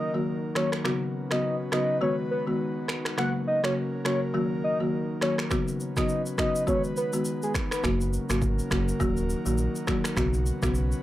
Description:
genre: afrobeats.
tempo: 103 BPM.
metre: 4/4.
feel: swing 58% on 16ths.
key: B major.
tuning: A4 = 440 Hz.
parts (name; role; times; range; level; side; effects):
soft octave-layered synth lead; melody; 0.0-7.8 s; G#4 to F#5; -29 LUFS; equal; chorus.
folk marimba with medium hard mallets; accompaniment; 0.0-10.8 s; C#3 to F#4; -28 LUFS; left 1 dB; none.
airy breathy pad; sustained chords; 0.0-11.0 s; G#3 to B4; -36 LUFS; right 1 dB; chorus.
deep house drum kit; drums; 0.6-11.0 s; finger snaps, kick drum, rim click, shaker; -30 LUFS; equal; none.
sub bass with octave; bass; 7.8-10.9 s; D#1 to B1; -28 LUFS; equal; none.
room: light reverb.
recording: dry, gritty hardware recording.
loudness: -24 LUFS.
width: side -14 dB against mid.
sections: 0.0-11.0 A section.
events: none.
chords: 0.0 D#m; 0.8 Bsus2; 2.0 G#m7; 3.2 F#; 4.3 D#m; 5.5 Bsus2; 6.7 G#m7; 7.8 F#; 9.0 D#m; 10.2 Bsus2.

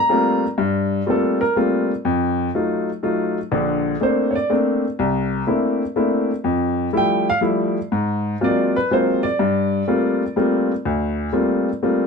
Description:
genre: jazz.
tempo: 123 BPM.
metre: 3/4.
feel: swing 66% on 8ths.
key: G minor.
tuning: A4 = 441 Hz.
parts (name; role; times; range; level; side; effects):
clear upright piano; solo; 0.0-12.1 s; Bb1 to Bb5; -17 LUFS; left 1 dB; none.
room: moderate studio reverb, RT60 0.6 s.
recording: dark, warm production.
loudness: -18 LUFS.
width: side -5 dB against mid.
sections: 0.6-12.1 A section.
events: none.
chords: 0.0 Gm11; 2.0 F7b9; 3.5 Bbmaj9; 5.0 C13; 6.5 Fmaj9; 7.9 Ab13; 9.4 Gm11.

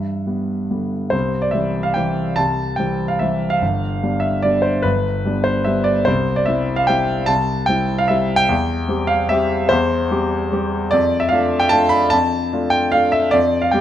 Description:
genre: classical, piano waltz.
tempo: 148 BPM.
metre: 3/4.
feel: uneven beats, rubato.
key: C major.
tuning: A4 = 440 Hz.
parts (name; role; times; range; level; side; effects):
warm grand piano; solo; 0.0-13.8 s; G1 to B5; -16 LUFS; equal; none.
room: moderate recital hall reverb, RT60 1.6 s.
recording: close, detailed microphones.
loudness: -16 LUFS.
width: side -11 dB against mid.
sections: 0.0-1.1 A section; 1.1-13.8 B section.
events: none.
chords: 0.0 G; 1.1 C; 3.6 G7; 6.1 C; 8.5 C/E; 10.9 Dm/F.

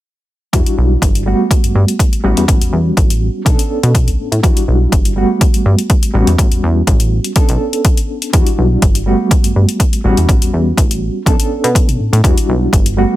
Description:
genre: filtered disco house.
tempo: 123 BPM.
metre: 4/4.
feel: straight.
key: E dorian.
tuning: A4 = 440 Hz.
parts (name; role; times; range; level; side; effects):
reed electric piano; accompaniment; 0.5-13.2 s; G3 to A4; -17 LUFS; equal; fast tremolo, phaser, sidechain pumping, low-pass filter.
plucky analog bass; bass; 0.5-13.1 s; G1 to B2; -14 LUFS; equal; sidechain pumping, low-pass filter.
electronic hi-hat; drums; 0.5-13.0 s; none; -22 LUFS; left 6 dB; overdrive, sidechain pumping on hats.
electronic kick drum; drums; 0.5-12.8 s; none; -12 LUFS; equal; overdrive.
room: little or no reverb.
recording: none.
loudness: -10 LUFS.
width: side -15 dB against mid.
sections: 0.5-13.2 A section.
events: filter sweep 0.5-13.2.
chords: 0.5 Em9; 1.3 Gmaj9; 2.2 A13; 3.5 Bm9; 4.4 Em9; 5.2 Gmaj9; 6.1 A13; 7.4 Bm9; 8.3 Em9; 9.1 Gmaj9; 10.0 A13; 11.3 Bm9; 12.2 Em9.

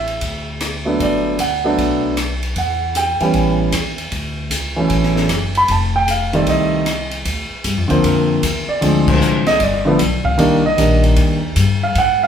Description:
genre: jazz piano trio.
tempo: 153 BPM.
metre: 4/4.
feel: swing 65% on 8ths.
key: Bb major from 7.3 s.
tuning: A4 = 442 Hz.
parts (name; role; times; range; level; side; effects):
warm upright piano; melody; 0.0-12.3 s; D3 to B5; -15 LUFS; right 1 dB; none.
upright bass; bass; 0.0-12.3 s; F1 to Ab2; -21 LUFS; left 1 dB; none.
open jazz drum kit; drums; 0.1-12.1 s; crash cymbal, hi-hat, kick drum, ride cymbal, rim click, snare drum; -22 LUFS; left 1 dB; none.
room: moderate large studio reverb, RT60 1.2 s.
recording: band playing live in one room.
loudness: -14 LUFS.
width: side -8 dB against mid.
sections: 0.0-7.3 A section; 7.3-12.3 B section.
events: band accent 9.0.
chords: 0.2 N.C.; 1.0 Gmaj9; 2.6 Em; 3.3 A7; 4.1 Dmaj7; 5.7 F7; 7.3 Bb; 8.8 Dm7b5; 9.6 G7; 10.4 Cm9.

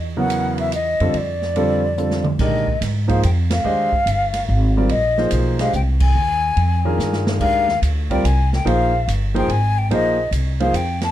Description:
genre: modal jazz.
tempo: 144 BPM.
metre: 3/4.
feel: swing 67% on 8ths.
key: Bb mixolydian.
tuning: A4 = 440 Hz.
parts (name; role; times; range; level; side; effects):
upright bass; bass; 0.0-11.1 s; G1 to Bb2; -20 LUFS; equal; none.
breathy concert flute; melody; 0.2-11.1 s; D5 to A5; -21 LUFS; left 2 dB; plate reverb.
warm concert grand piano; accompaniment; 0.2-10.7 s; C#3 to Eb5; -22 LUFS; right 1 dB; none.
open jazz drum kit; drums; 0.3-11.1 s; crash cymbal, hi-hat, kick drum, ride cymbal, snare drum, toms; -27 LUFS; right 2 dB; none.
room: light reverb.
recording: dark, warm production.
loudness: -16 LUFS.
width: side -12 dB against mid.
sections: 0.0-2.4 A section; 2.4-11.1 B section.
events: drum fill 2.0-2.4, 7.0-7.4; band accent 3.4, 5.9.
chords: 0.0 Emaj7sus2; 1.1 F69; 2.4 Bb13sus4.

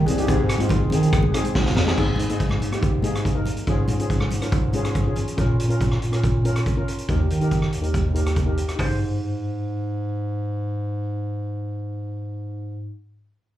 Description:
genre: calypso.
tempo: 141 BPM.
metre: 4/4.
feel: straight.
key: Ab major.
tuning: A4 = 440 Hz.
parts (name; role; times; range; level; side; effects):
steel pan; melody; 0.0-1.4 s; C4 to Ab4; -29 LUFS; left 5 dB; none.
mellow bass clarinet; bass; 0.0-12.9 s; C2 to Eb3; -24 LUFS; equal; none.
street-band drum kit; drums; 0.1-8.9 s; crash cymbal, hi-hat, kick drum, rim click, snare drum, toms; -23 LUFS; equal; none.
congas; percussion; 0.1-5.3 s; none; -30 LUFS; equal; none.
steel pan; accompaniment; 0.2-12.9 s; Bb3 to C5; -28 LUFS; left 1 dB; slapback echo.
room: little or no reverb.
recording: live gig heard through the venue's PA, club reverb.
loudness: -20 LUFS.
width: side -13 dB against mid.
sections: 0.0-2.0 A section; 2.0-8.8 B section; 8.8-12.2 C section.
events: drum fill 1.4-2.0.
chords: 0.3 Ab; 2.0 Absus2; 3.7 Db/Ab; 5.4 Bbm; 7.1 Eb; 8.8 Ab.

